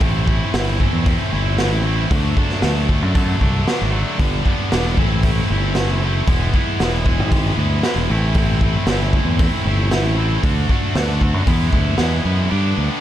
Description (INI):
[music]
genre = indie rock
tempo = 116 BPM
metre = 4/4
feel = straight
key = A dorian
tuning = A4 = 437 Hz
[part]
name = heavy high-gain guitar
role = riff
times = 0.0-13.0 s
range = G2 to G4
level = -21 LUFS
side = equal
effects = distortion
[part]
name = growling fingered electric bass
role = bass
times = 0.0-12.9 s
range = E1 to G2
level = -19 LUFS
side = equal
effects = overdrive
[part]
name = raw garage drum kit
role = drums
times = 0.0-12.1 s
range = hi-hat, kick drum, snare drum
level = -19 LUFS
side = equal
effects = none
[sound]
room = small room ambience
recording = dark, warm production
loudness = -15 LUFS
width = side -12 dB against mid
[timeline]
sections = 0.0-12.5 A section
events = none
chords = 0.0 Am7; 2.1 D; 4.2 G; 5.0 Am7; 6.3 E; 8.1 Am7; 10.4 D; 11.5 E7; 12.5 G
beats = | 0.01 0.54 1.06 1.59 | 2.11 2.63 3.16 3.68 | 4.20 4.72 5.24 5.76 | 6.28 6.80 7.32 7.83 | 8.35 8.87 9.39 9.91 | 10.43 10.95 11.46 11.98 | 12.50